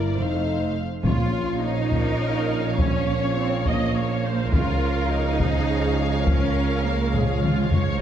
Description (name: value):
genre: cinematic, epic orchestral film score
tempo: 69 BPM (dotted quarters)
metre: 6/8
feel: straight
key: Bb minor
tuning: A4 = 440 Hz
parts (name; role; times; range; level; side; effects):
- warm symphonic violin section; melody; 0.0-8.0 s; D5 to F5; -37 LUFS; left 3 dB; none
- warm symphonic violin section; second line; 0.0-8.0 s; Bb4 to F5; -32 LUFS; left 4 dB; none
- warm studio viola section; accompaniment; 0.0-8.0 s; A3 to Eb5; -30 LUFS; right 2 dB; none
- warm French horn section; sustained chords; 0.0-7.9 s; Db4 to F4; -32 LUFS; left 5 dB; none
- warm symphonic cello section; bass; 0.0-8.0 s; F2 to F4; -28 LUFS; right 2 dB; none
- warm symphonic double bass section; bass; 0.0-8.0 s; F1 to Db2; -28 LUFS; right 3 dB; none
- clear trombone section; sustained chords; 1.0-8.0 s; Ab2 to F3; -35 LUFS; right 5 dB; none
- taiko ensemble; drums; 1.0-8.0 s; none; -24 LUFS; left 1 dB; none
- mellow tuba; bass; 1.1-8.0 s; Bb1 to Db2; -28 LUFS; right 4 dB; none
- timpani; percussion; 1.1-1.9 s; Bb2; -28 LUFS; equal; none
room: light reverb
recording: dark, warm production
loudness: -20 LUFS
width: side -9 dB against mid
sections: 0.0-1.1 A section; 1.1-8.0 B section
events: drum fill 7.1-8.0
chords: 0.2 F7; 1.1 Bbm; 4.5 Db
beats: 0.18 | 1.05 1.92 | 2.79 3.66 | 4.53 5.40 | 6.27 7.14 | 8.01